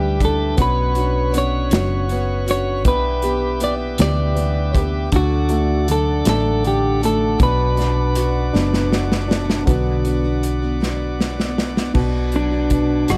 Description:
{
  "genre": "six-eight pop ballad",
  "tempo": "53 BPM (dotted quarters)",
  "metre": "6/8",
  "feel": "straight",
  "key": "B minor",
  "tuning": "A4 = 441 Hz",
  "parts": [
    { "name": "clean electric guitar", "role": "melody", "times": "0.0-8.9, 12.4-13.2 s", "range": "D4 to D5", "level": "-24 LUFS", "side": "equal", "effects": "none" },
    { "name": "warm upright piano", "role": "accompaniment", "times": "0.0-13.2 s", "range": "B2 to G4", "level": "-26 LUFS", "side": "equal", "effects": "none" },
    { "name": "bright tonewheel organ", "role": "sustained chords", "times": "0.0-13.2 s", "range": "A4 to D6", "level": "-33 LUFS", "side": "equal", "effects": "subtle chorus" },
    { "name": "picked plugged-in steel-string acoustic guitar", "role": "arpeggios", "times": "0.0-13.2 s", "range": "B2 to B4", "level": "-30 LUFS", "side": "equal", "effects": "none" },
    { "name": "hollow-body short-scale fingered electric bass", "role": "bass", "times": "0.0-13.2 s", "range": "F#1 to D2", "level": "-23 LUFS", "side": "equal", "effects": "none" },
    { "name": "modern studio drum kit", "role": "drums", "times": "0.2-13.2 s", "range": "crash cymbal, hi-hat, kick drum, rim click, snare drum", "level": "-23 LUFS", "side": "equal", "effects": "none" }
  ],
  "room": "little or no reverb",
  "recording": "none",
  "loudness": "-19 LUFS",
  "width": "mono",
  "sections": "0.0-9.7 A section; 9.7-11.9 B section; 11.9-13.2 C section",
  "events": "drum fill 8.5-9.7, 10.8-11.9; upright piano solo 9.7-11.9",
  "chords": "0.0 G6; 0.6 Bmadd9; 2.9 G6/B; 5.1 D; 7.4 Bm",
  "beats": "| 0.58 1.72 | 2.85 3.99 | 5.12 6.26 | 7.40 8.53 | 9.67 10.81 | 11.95 13.08"
}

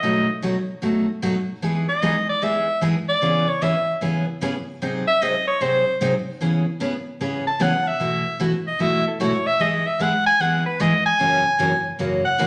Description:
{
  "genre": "country",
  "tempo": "150 BPM",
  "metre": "4/4",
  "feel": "swing 66% on 8ths",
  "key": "E major",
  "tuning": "A4 = 440 Hz",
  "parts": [
    { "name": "clear soprano saxophone", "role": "melody", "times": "0.0-12.5 s", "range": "A4 to A5", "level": "-22 LUFS", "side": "equal", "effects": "none" },
    { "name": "picked steel-string acoustic guitar", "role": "accompaniment", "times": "0.0-12.5 s", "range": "F#2 to B#4", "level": "-24 LUFS", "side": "equal", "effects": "none" }
  ],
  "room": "wet large studio reverb, RT60 1.1 s",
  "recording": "none",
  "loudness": "-21 LUFS",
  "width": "mono",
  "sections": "0.0-12.5 A section",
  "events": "soprano saxophone solo 0.0-12.5",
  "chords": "0.0 B7; 1.6 Emaj7; 3.2 C#m7; 4.8 G#7/B#; 6.4 C#m7; 8.0 B7sus4; 9.6 Emaj7; 11.2 F#7",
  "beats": "| 0.03 0.42 0.82 1.22 | 1.62 2.02 2.42 2.82 | 3.22 3.62 4.01 4.41 | 4.81 5.21 5.61 6.01 | 6.41 6.81 7.21 7.60 | 8.00 8.40 8.80 9.20 | 9.60 10.00 10.40 10.80 | 11.20 11.59 11.99 12.39"
}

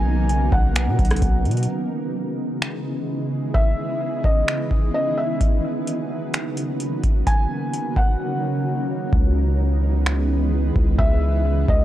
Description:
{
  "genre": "hip hop, atmospheric cloud-rap",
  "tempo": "129 BPM",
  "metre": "4/4",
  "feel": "half-time",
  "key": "C# dorian",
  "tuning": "A4 = 440 Hz",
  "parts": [
    { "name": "felt-muted upright piano", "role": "melody", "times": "0.0-11.8 s", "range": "D#5 to G#5", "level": "-27 LUFS", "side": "left 1 dB", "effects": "low-pass filter, analog delay" },
    { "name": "shimmering ambient pad", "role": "sustained chords", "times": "0.0-11.8 s", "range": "C#3 to C#4", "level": "-25 LUFS", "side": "right 1 dB", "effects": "chorus, built-in reverb, sidechain pumping" },
    { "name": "long sustained 808-style bass", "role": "bass", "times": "0.0-1.7, 9.1-11.8 s", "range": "B1 to B2", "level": "-20 LUFS", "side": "equal", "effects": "none" },
    { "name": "booming analog drum machine", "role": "drums", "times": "0.3-11.8 s", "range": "finger snaps, hi-hat, kick drum, rim click", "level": "-19 LUFS", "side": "equal", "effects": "overdrive" }
  ],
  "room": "little or no reverb",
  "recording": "dry, gritty hardware recording, cassette tape",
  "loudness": "-19 LUFS",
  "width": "side -13 dB against mid",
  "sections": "0.0-1.7 A section; 1.7-9.1 B section; 9.1-11.8 C section",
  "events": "break 8.2-9.1; hi-hats muted 9.1-11.8",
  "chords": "0.0 Bmaj9; 1.7 C#m9; 5.4 Bmaj9; 9.1 C#m9",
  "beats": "0.29 0.76 1.22 | 1.69 2.15 2.62 3.08 | 3.55 4.01 4.48 4.94 | 5.41 5.87 6.34 6.80 | 7.27 7.73 8.20 8.66 | 9.13 9.59 10.06 10.52 | 10.99 11.45"
}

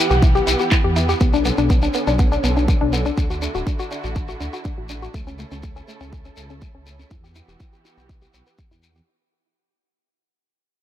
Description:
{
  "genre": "melodic techno",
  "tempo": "122 BPM",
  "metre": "4/4",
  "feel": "straight",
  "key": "unclear",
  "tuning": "A4 = 441 Hz",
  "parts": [
    { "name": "muted studio string section", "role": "sustained chords", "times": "0.0-9.1 s", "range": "C#3 to F#5", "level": "-27 LUFS", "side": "right 3 dB", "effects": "sidechain pumping, low-pass filter" },
    { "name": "woody wave-folded pluck", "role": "arpeggios", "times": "0.0-9.0 s", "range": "A3 to C#5", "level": "-23 LUFS", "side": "left 3 dB", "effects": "chorus, sidechain pumping, ping-pong delay" },
    { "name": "dark detuned saw bass", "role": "bass", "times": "0.1-9.0 s", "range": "D1 to E2", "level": "-23 LUFS", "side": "equal", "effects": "sidechain pumping" },
    { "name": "shekere", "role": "percussion", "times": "0.1-9.1 s", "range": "none", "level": "-28 LUFS", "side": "left 5 dB", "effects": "none" },
    { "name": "electronic kick drum", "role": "drums", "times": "0.2-8.7 s", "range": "none", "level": "-19 LUFS", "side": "equal", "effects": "small room ambience" },
    { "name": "house drum kit", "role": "drums", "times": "0.5-8.9 s", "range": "handclaps, hi-hat", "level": "-28 LUFS", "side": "right 1 dB", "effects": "low-pass filter on hats, small room ambience, low-pass filter on snare" }
  ],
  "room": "little or no reverb",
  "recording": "none",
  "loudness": "-17 LUFS",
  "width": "side -11 dB against mid",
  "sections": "0.0-9.1 A section",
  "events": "fade-out 0.0-9.1",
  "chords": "0.0 Emadd9; 1.2 Bmadd9; 3.2 Dadd9; 5.1 A/C#; 7.1 Emadd9",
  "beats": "0.23 0.72 | 1.21 1.70 2.19 2.68 | 3.18 3.67 4.16 4.65 | 5.14 5.63 6.13 6.62 | 7.11 7.60 8.09 8.59"
}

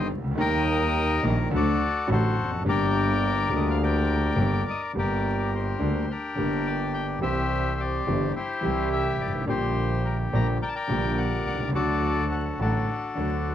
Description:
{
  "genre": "tango",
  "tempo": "106 BPM",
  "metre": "4/4",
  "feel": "rubato",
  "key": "G minor, G harmonic minor from 4.9 s",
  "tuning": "A4 = 440 Hz",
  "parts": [
    { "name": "bandoneon", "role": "melody", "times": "0.0-13.5 s", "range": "D4 to Bb5", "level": "-28 LUFS", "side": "left 4 dB", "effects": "none" },
    { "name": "warm concert grand piano", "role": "accompaniment", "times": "0.0-13.5 s", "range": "G1 to G4", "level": "-27 LUFS", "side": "equal", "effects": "none" },
    { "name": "clear double bass", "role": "bass", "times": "0.0-13.5 s", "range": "F1 to Eb2", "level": "-28 LUFS", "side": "right 1 dB", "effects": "none" }
  ],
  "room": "light reverb",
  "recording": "close, detailed microphones, vinyl crackle",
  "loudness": "-23 LUFS",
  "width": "side -10 dB against mid",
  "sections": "0.0-4.9 A section; 4.9-13.5 B section",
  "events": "none",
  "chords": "0.4 Eb; 1.5 D; 2.7 Gm; 7.2 C; 9.5 Gm/Bb; 11.7 D",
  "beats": "| 0.40 0.96 1.52 2.09 | 2.66 3.23 3.80 4.37 | 4.95 5.52 6.09 6.66 | 7.22 7.79 8.36 8.92 | 9.49 10.05 10.62 11.18 | 11.74 12.31 12.88 13.45"
}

